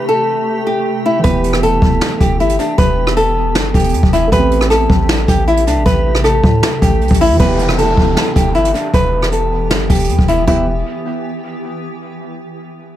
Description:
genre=hip hop, trap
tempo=156 BPM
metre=4/4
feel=half-time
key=E minor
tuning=A4 = 442 Hz
part: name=nylon-string guitar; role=melody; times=0.0-10.7 s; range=D4 to B4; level=-16 LUFS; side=equal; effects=analog delay
part: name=granular cloud pad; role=sustained chords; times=0.0-10.7 s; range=C3 to G4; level=-23 LUFS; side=equal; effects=built-in reverb
part: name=dark grand piano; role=accompaniment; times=1.2-10.7 s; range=E3 to G4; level=-23 LUFS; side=right 4 dB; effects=analog delay
part: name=warm 808-style bass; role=bass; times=1.2-10.8 s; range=E1 to A2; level=-17 LUFS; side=equal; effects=none
part: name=jazz brush drum kit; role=drums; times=1.2-10.6 s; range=crash cymbal, hi-hat, kick drum, rim click, snare drum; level=-15 LUFS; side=equal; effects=none
part: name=downlifter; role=sound effects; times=7.4-10.5 s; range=none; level=-26 LUFS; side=right 1 dB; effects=none
room=light reverb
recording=echo-heavy mix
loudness=-11 LUFS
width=side -12 dB against mid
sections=0.0-7.4 A section; 7.4-10.5 B section; 10.5-12.0 C section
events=none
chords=0.0 Am7; 1.2 Em; 4.3 Am7; 7.4 Em

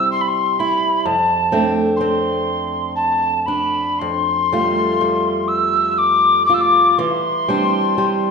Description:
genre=celtic folk, Celtic slow air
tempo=57-66 BPM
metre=3/4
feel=rubato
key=unclear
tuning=A4 = 440 Hz
part: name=mellow wooden whistle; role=melody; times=0.0-8.3 s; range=A5 to E6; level=-16 LUFS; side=left 2 dB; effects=none
part: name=fingerpicked old ladder-braced acoustic guitar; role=accompaniment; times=0.0-8.3 s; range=F2 to F4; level=-20 LUFS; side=right 2 dB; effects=none
room=moderate scoring stage reverb, RT60 1.7 s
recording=minimal, uncompressed stereo recording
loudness=-15 LUFS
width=side -5 dB against mid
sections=0.0-8.3 A section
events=none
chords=0.0 C; 1.0 F6; 4.0 Fadd9; 7.0 Cadd9/E

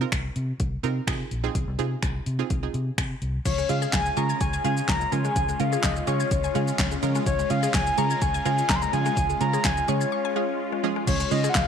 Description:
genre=dance-pop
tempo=126 BPM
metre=4/4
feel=straight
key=Db major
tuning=A4 = 438 Hz
part: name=analog pluck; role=accompaniment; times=0.0-11.7 s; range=Ab3 to Bb4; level=-31 LUFS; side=right 13 dB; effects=chorus, sidechain pumping
part: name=vintage muted fingered electric bass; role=bass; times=0.0-11.7 s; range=Bb1 to Db3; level=-28 LUFS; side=equal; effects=sidechain pumping
part: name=deep house drum kit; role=drums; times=0.1-11.7 s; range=crash cymbal, finger snaps, handclaps, hi-hat, kick drum, shaker, snare drum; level=-27 LUFS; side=equal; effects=overdrive
part: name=soft octave-layered synth lead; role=melody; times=3.5-11.7 s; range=Db5 to C6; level=-27 LUFS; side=left 2 dB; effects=chorus, tape echo
part: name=supersaw pad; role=sustained chords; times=3.5-11.7 s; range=Ab3 to F4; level=-32 LUFS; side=left 1 dB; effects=phaser, sidechain pumping
part: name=mallet-like synth pluck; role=arpeggios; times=3.5-11.6 s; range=F3 to Ab6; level=-34 LUFS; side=left 11 dB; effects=chorus, phaser, sidechain pumping, tape echo
room=moderate plate reverb, RT60 1.6 s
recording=1960s-style stereo with parts hard left and right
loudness=-22 LUFS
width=side -7 dB against mid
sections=0.0-3.5 A section; 3.5-11.1 B section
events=break 10.1-11.1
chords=0.0 Fm7; 3.5 Db

